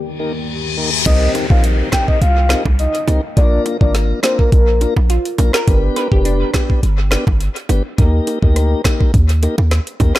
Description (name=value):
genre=dancehall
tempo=104 BPM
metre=4/4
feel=straight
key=C minor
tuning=A4 = 440 Hz
part: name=deep dark ambient pad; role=sustained chords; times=0.0-1.0 s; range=Eb2 to Bb4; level=-27 LUFS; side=left 3 dB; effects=chorus, built-in reverb, sidechain pumping
part: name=reverse cymbal and downlifter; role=sound effects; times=0.2-5.7 s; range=none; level=-24 LUFS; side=left 4 dB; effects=none
part: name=mellow tonewheel organ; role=accompaniment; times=0.2-10.1 s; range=Bb3 to B4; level=-22 LUFS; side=left 3 dB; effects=slow rotary speaker
part: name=soft octave-layered synth lead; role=melody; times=1.1-4.9 s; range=Bb4 to G5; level=-20 LUFS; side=left 1 dB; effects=chorus, tremolo, dub echo
part: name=warm 808-style bass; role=bass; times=1.1-10.1 s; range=F1 to Eb2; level=-14 LUFS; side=equal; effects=none
part: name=island pop drum kit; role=drums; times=1.1-10.2 s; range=crash cymbal, hi-hat, kick drum, rim click, snare drum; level=-16 LUFS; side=equal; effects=dub echo
part: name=bongos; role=percussion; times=1.3-10.1 s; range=none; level=-25 LUFS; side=right 6 dB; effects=none
part: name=glassy wavetable pluck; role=second line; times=5.1-7.4 s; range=D4 to B4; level=-22 LUFS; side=right 2 dB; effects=chorus, dub echo
room=digital ambience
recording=echo-heavy mix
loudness=-12 LUFS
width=side -15 dB against mid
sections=0.0-1.1 A section; 1.1-10.2 B section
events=reverse cymbal 0.2-1.1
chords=0.0 Eb; 1.1 Cm7; 3.4 Bb; 5.7 G; 8.0 Eb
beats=0.48 | 1.06 1.64 2.21 2.79 | 3.37 3.95 4.52 5.10 | 5.68 6.25 6.83 7.41 | 7.98 8.56 9.14 9.71